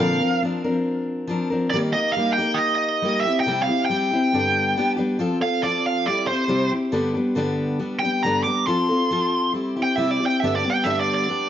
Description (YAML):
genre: rock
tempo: 138 BPM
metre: 4/4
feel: straight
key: G mixolydian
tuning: A4 = 440 Hz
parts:
  - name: bluesy overdriven lead guitar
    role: melody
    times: 0.0-11.5 s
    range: C5 to D6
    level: -22 LUFS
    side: right 2 dB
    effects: distortion, plate reverb
  - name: picked steel-string acoustic guitar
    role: accompaniment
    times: 0.0-11.5 s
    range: G2 to Bb4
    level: -22 LUFS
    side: left 2 dB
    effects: plate reverb
room: moderate studio reverb, RT60 0.7 s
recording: nothing above 7.6 kHz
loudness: -19 LUFS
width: side -10 dB against mid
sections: 0.0-5.2 A section; 5.2-11.5 B section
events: lead electric guitar solo 5.2-11.5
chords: 0.0 Bbadd9; 1.7 Eb; 3.2 C; 4.3 G; 5.2 F; 6.1 C; 6.9 G; 8.7 F; 9.5 C; 10.4 G